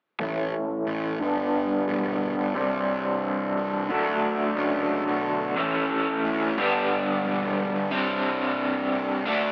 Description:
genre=rock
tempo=89 BPM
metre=4/4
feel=straight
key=unclear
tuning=A4 = 441 Hz
part: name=overdriven electric guitar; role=riff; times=0.2-9.5 s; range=G2 to E4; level=-26 LUFS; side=equal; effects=tremolo, low-pass filter
part: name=fuzz picked electric bass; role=bass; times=0.2-9.5 s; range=E1 to D2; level=-34 LUFS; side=equal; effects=overdrive
room=moderate stone room reverb, RT60 1.1 s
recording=rough rehearsal-room recording, warm saturation, AM radio sound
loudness=-26 LUFS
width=mono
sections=0.2-9.5 A section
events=filter sweep on overdriven electric guitar 0.2-9.5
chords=0.2 A; 1.2 G; 2.5 Csus2; 3.9 D; 5.6 A; 6.6 G; 7.9 Csus2

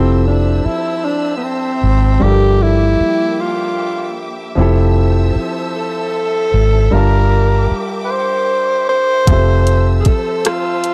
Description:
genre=slow six-eight R&B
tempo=51 BPM (dotted quarters)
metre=6/8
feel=straight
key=F major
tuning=A4 = 441 Hz
part: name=breathy tenor saxophone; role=melody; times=0.0-10.9 s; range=B3 to C5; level=-19 LUFS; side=equal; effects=none
part: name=warm baby grand piano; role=accompaniment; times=0.0-10.9 s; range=F3 to A5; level=-23 LUFS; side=equal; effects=none
part: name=warm studio string section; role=sustained chords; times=0.0-10.9 s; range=Bb3 to E6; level=-29 LUFS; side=equal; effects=none
part: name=vintage muted fingered electric bass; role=bass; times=0.0-10.1 s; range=F1 to Ab1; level=-15 LUFS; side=equal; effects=none
part: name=smooth R&B drum kit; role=drums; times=9.3-10.9 s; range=hi-hat, kick drum, rim click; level=-16 LUFS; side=equal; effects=none
room=studio ambience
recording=dry, gritty hardware recording, transformer saturation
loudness=-15 LUFS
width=mono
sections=0.0-10.9 A section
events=none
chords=0.0 Fmaj7; 2.2 Gm7; 4.6 Fmaj7; 6.9 Gm7; 9.3 Fmaj7

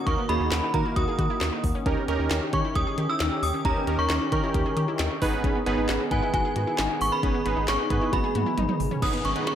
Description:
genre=synth-pop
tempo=134 BPM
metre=4/4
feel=straight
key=unclear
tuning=A4 = 440 Hz
part: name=synth chime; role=melody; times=0.0-9.6 s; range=G#5 to E6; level=-29 LUFS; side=equal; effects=ensemble chorus
part: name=chorused pulse-width pad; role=sustained chords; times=0.0-9.6 s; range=D#3 to G#4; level=-31 LUFS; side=equal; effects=none
part: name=wide unison pluck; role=arpeggios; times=0.0-9.6 s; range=B3 to G#4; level=-34 LUFS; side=left 5 dB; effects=analog delay
part: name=warm analog keys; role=accompaniment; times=0.1-9.6 s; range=A#3 to C#5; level=-30 LUFS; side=right 4 dB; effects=chorus
part: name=round analog bass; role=bass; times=0.1-9.3 s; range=G#1 to D#3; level=-29 LUFS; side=equal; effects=none
part: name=minimal click drum kit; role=drums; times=0.1-9.6 s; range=crash cymbal, handclaps, hi-hat, kick drum, snare drum, toms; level=-28 LUFS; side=equal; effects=none
part: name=downlifter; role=sound effects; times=9.0-9.6 s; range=none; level=-34 LUFS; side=left 1 dB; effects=none
room=light reverb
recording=none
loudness=-22 LUFS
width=side -10 dB against mid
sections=0.0-9.0 A section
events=drum fill 8.1-9.0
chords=0.0 D#m; 1.9 D#7; 5.2 G#m

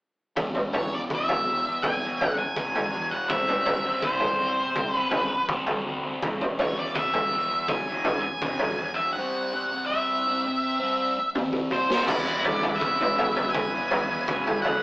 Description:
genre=psychedelic rock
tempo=82 BPM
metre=4/4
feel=straight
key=E mixolydian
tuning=A4 = 440 Hz
part: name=fuzz guitar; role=riff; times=0.4-14.8 s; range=E2 to C4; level=-31 LUFS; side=equal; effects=distortion, phaser
part: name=growling picked electric bass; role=bass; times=0.4-14.8 s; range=E1 to D2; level=-41 LUFS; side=equal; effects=overdrive
part: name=overtone-sweeping drone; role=drone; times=1.8-12.2 s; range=E2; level=-42 LUFS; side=equal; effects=none
part: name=raw garage drum kit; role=drums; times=0.4-14.8 s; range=crash cymbal, kick drum, snare drum, toms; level=-27 LUFS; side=equal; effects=none
part: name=octave-fuzz lead guitar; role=melody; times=0.7-14.8 s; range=C5 to G#5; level=-26 LUFS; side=equal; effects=distortion, analog delay
part: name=combo organ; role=sustained chords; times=12.0-14.8 s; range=G#3 to B4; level=-31 LUFS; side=equal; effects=none
room=wet stone room reverb, RT60 1.1 s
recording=rough rehearsal-room recording, tube saturation, AM radio sound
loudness=-23 LUFS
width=side -23 dB against mid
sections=0.4-12.1 A section; 12.1-14.8 B section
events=drum fill 11.4-12.1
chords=0.4 E; 3.3 C; 6.2 E; 9.2 C; 12.1 E

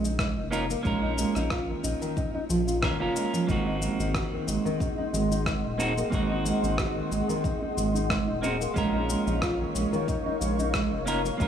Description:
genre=organic downtempo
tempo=91 BPM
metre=4/4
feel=swing 54% on 16ths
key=Ab mixolydian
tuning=A4 = 442 Hz
part: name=clean electric guitar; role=accompaniment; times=0.0-11.5 s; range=Bb3 to Bb4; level=-32 LUFS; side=right 2 dB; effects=sidechain pumping, tape echo
part: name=nylon-string guitar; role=arpeggios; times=0.0-11.5 s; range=Eb3 to Gb4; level=-29 LUFS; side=right 1 dB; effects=tape echo
part: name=round analog bass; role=bass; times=0.0-11.5 s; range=Eb1 to Bb1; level=-31 LUFS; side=left 1 dB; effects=sidechain pumping
part: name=electronic shaker and rim click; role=drums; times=0.0-11.5 s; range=none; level=-34 LUFS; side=left 2 dB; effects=none
part: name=electronic kick drum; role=drums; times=0.2-11.5 s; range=none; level=-31 LUFS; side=equal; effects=none
part: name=ethereal airy pad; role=sustained chords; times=4.1-11.5 s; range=Ab4 to Db6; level=-34 LUFS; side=left 2 dB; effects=ensemble chorus, built-in reverb, sidechain pumping
room=light reverb, digital ambience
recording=studio reverb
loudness=-25 LUFS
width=side -8 dB against mid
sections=0.0-11.5 A section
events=none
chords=0.0 Bbm; 3.5 Ab7; 8.8 Bbm

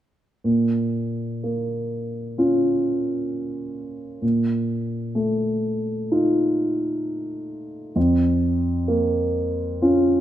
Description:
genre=classical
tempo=65 BPM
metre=4/4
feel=rubato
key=Bb minor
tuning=A4 = 438 Hz
part: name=dark grand piano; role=accompaniment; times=0.4-10.2 s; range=F2 to F4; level=-20 LUFS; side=equal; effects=none
room=moderate scoring stage reverb, RT60 1.7 s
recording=close, detailed microphones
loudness=-20 LUFS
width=side -12 dB against mid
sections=0.4-10.2 A section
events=none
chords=0.4 Bbm; 4.2 F7/Bb; 8.0 Bbm/F

